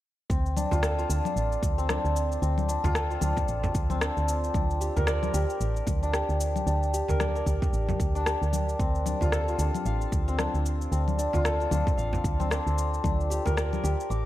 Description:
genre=organic downtempo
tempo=113 BPM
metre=4/4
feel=swing 59% on 16ths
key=D minor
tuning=A4 = 440 Hz
part: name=santur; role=arpeggios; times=0.3-14.3 s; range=C4 to D6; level=-29 LUFS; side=left 1 dB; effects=ping-pong delay
part: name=woody FM bass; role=bass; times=0.3-14.3 s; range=A1 to D2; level=-28 LUFS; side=equal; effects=sidechain pumping
part: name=electronic kick drum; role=drums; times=0.3-13.2 s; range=none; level=-29 LUFS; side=equal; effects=none
part: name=electronic shaker, congas and rim click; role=drums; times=0.3-14.2 s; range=none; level=-34 LUFS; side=left 3 dB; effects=none
part: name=frame drum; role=percussion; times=0.7-13.5 s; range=none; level=-34 LUFS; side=right 2 dB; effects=none
room=light reverb, small room ambience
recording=none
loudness=-24 LUFS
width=side -14 dB against mid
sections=0.3-14.3 A section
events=none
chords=0.3 Dm7; 4.5 Gm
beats=| 0.30 0.83 1.36 1.89 | 2.42 2.95 3.48 4.01 | 4.54 5.08 5.61 6.14 | 6.67 7.20 7.73 8.26 | 8.79 9.32 9.85 10.38 | 10.92 11.45 11.98 12.51 | 13.04 13.57 14.10

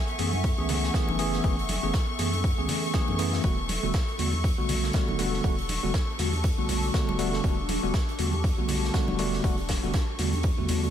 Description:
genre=deep house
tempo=120 BPM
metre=4/4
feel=swing 57% on 16ths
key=unclear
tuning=A4 = 435 Hz
part: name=clear studio violin section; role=texture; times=0.0-10.9 s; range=C#6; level=-35 LUFS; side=left 3 dB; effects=sidechain pumping
part: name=granular cloud pad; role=texture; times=0.0-10.9 s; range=B3 to G#5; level=-36 LUFS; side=right 1 dB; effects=built-in reverb, sidechain pumping
part: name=raw garage drum kit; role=drums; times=0.1-10.9 s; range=hi-hat, snare drum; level=-38 LUFS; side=right 2 dB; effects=high-pass filter on hats, small room ambience, high-pass filter on snare, high-pass filter on room
part: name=tine electric piano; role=stabs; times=0.2-10.9 s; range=D3 to G#4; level=-30 LUFS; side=equal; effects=medium stereo tremolo, vintage 12-bit sampler grit, sidechain pumping, ping-pong delay
part: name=round analog bass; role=bass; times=0.2-10.9 s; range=E1 to F#2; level=-30 LUFS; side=equal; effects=tube saturation, sidechain pumping
part: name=electronic hi-hat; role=drums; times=0.2-10.8 s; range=none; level=-36 LUFS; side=left 3 dB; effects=small room ambience
part: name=congas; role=percussion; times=0.3-10.8 s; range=none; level=-37 LUFS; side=right 2 dB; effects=sidechain pumping on perc
part: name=electronic kick drum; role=drums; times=0.4-10.6 s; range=none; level=-26 LUFS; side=equal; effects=small room ambience
room=studio reverb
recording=none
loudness=-24 LUFS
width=side -10 dB against mid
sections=0.0-10.9 A section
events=none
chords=0.0 F#m11; 3.4 Em11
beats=0.44 0.94 | 1.44 1.94 2.44 2.94 | 3.44 3.94 4.44 4.94 | 5.44 5.94 6.44 6.94 | 7.44 7.94 8.44 8.94 | 9.44 9.94 10.44

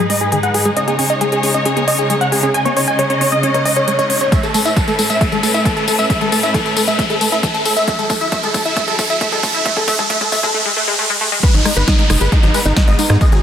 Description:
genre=uplifting trance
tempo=135 BPM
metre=4/4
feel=straight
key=C# minor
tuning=A4 = 435 Hz
part: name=supersaw stab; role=melody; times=0.0-13.4 s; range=D#4 to G#5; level=-17 LUFS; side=equal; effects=sidechain pumping, low-pass filter, digital delay
part: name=clear studio string section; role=sustained chords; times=0.0-13.4 s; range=F#2 to D#5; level=-22 LUFS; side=equal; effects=sidechain pumping
part: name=tight sequenced synth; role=arpeggios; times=0.0-13.4 s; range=D#3 to G#4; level=-23 LUFS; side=left 2 dB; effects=chorus, phaser, sidechain pumping, digital delay
part: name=riser and downlifter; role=sound effects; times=1.8-13.4 s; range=none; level=-21 LUFS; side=right 1 dB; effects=none
part: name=big-room dance drum kit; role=drums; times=0.1-13.4 s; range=crash cymbal, hi-hat, rim click, snare drum, tambourine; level=-22 LUFS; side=left 2 dB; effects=overdrive, high-pass filter on perc, high-pass filter on hats, high-pass filter on cymbals, high-pass filter on snare
part: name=electronic kick drum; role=drums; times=4.3-13.3 s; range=none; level=-17 LUFS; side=equal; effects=none
part: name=tight sequencer bass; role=bass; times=11.5-13.4 s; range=F#1 to G#2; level=-15 LUFS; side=equal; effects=tube saturation, sidechain pumping
room=moderate concert hall reverb, RT60 2.3 s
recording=dense, heavily limited modern master, high-pass filter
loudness=-13 LUFS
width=side -9 dB against mid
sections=0.0-11.4 A section; 11.4-13.4 B section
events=build-up 0.0-11.4; filter sweep on supersaw synth 0.0-11.4; filter sweep on synth arpeggio sound 0.0-11.4; filter sweep 0.0-11.4; riser 1.8-11.4; drum fill 4.3-10.5; drop 11.4-13.4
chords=0.0 G#m; 0.8 C#sus2; 4.3 Aadd9; 7.9 F#m7; 11.4 G#m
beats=0.32 | 0.77 1.21 1.65 2.10 | 2.54 2.99 3.43 3.88 | 4.32 4.77 5.21 5.65 | 6.10 6.54 6.99 7.43 | 7.88 8.32 8.77 9.21 | 9.65 10.10 10.54 10.99 | 11.43 11.88 12.32 12.77 | 13.21

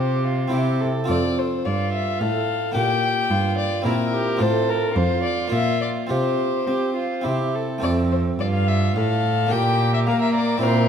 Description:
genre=classical, baroque-style sonata movement with continuo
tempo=108 BPM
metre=3/4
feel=rubato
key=F major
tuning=A4 = 440 Hz
part: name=warm violin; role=melody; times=0.0-10.9 s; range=Bb4 to G5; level=-25 LUFS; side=left 6 dB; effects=none
part: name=rich violin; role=second line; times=0.0-10.9 s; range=E4 to C5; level=-27 LUFS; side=right 6 dB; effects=none
part: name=harpsichord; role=accompaniment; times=0.0-10.9 s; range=F2 to A4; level=-25 LUFS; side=left 1 dB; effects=none
part: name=rich cello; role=bass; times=0.0-10.9 s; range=F2 to C4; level=-23 LUFS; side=right 1 dB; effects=none
room=wet recital hall reverb, RT60 1.4 s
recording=none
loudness=-19 LUFS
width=side -8 dB against mid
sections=0.0-7.8 A section; 7.8-10.9 A section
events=none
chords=0.0 Csus4; 0.5 C; 1.1 F; 2.8 Gm/Bb; 3.9 C7/Bb; 4.4 F/A; 5.5 Bb5; 6.1 Csus4; 7.3 C; 7.8 F; 9.5 Gm/Bb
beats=0.52 | 1.09 1.66 2.21 | 2.76 3.30 3.85 | 4.40 4.96 5.52 | 6.09 6.67 7.25 | 7.83 8.39 8.96 | 9.51 10.07 10.62

